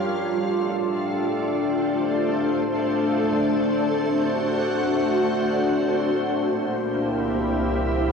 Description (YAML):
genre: ambient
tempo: free time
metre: none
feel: none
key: unclear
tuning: A4 = 440 Hz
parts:
  - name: soft additive organ-like pad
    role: sustained chords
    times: 0.0-8.1 s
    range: A3 to F#5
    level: -21 LUFS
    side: left 1 dB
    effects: ensemble chorus, built-in reverb, cassette tape
  - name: pedal harmonium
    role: drone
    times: 0.0-8.1 s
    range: G3 to D4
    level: -36 LUFS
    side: equal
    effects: cassette tape
  - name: deep rumbling drone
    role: bass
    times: 7.2-8.1 s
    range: C2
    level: -29 LUFS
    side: equal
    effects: built-in reverb
room: wet booth ambience, RT60 0.2 s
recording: home recording on cassette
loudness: -21 LUFS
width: side -5 dB against mid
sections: 0.0-6.2 A section; 6.2-8.1 B section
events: fade-out on harmonium 0.0-6.2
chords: 0.0 F6; 3.1 D7; 6.2 C7